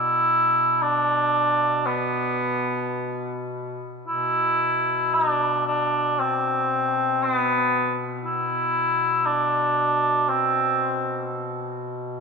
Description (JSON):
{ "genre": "caucasian folk, Caucasian lament", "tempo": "free time", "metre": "none", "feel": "none", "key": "B phrygian", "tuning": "A4 = 441 Hz", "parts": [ { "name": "dark cor anglais", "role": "melody", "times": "0.0-11.3 s", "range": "B3 to E4", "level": "-21 LUFS", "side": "right 1 dB", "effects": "none" }, { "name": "warm duduk", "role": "drone", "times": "0.0-12.2 s", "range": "B2", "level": "-31 LUFS", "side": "left 3 dB", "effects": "none" } ], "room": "wet church reverb, RT60 3.6 s", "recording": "minimal, uncompressed stereo recording", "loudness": "-20 LUFS", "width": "side -5 dB against mid", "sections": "0.0-4.1 A section; 4.1-12.2 B section", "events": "none", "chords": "none", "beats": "free time" }